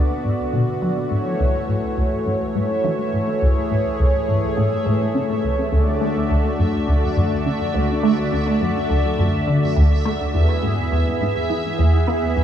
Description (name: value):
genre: ambient, sequencer-driven space music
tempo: 104 BPM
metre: 4/4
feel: straight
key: unclear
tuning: A4 = 440 Hz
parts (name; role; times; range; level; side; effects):
- lush unison pad; sustained chords; 0.0-12.4 s; D3 to E5; -21 LUFS; equal; chorus
- resonant blip pluck; riff; 0.0-12.4 s; C#2 to B3; -20 LUFS; equal; phaser, analog chorus, tape echo
- bubbling stepped-filter texture; texture; 0.0-12.4 s; E5; -32 LUFS; right 5 dB; chorus, built-in reverb
room: moderate plate reverb, RT60 2.7 s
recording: echo-heavy mix, small room ambience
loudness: -17 LUFS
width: side -10 dB against mid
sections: 0.0-12.4 A section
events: fade-in on synth texture 0.0-12.4; filter sweep on synth arpeggio sound 0.0-12.4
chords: 0.0 Bm; 1.1 A6; 5.7 D; 10.3 E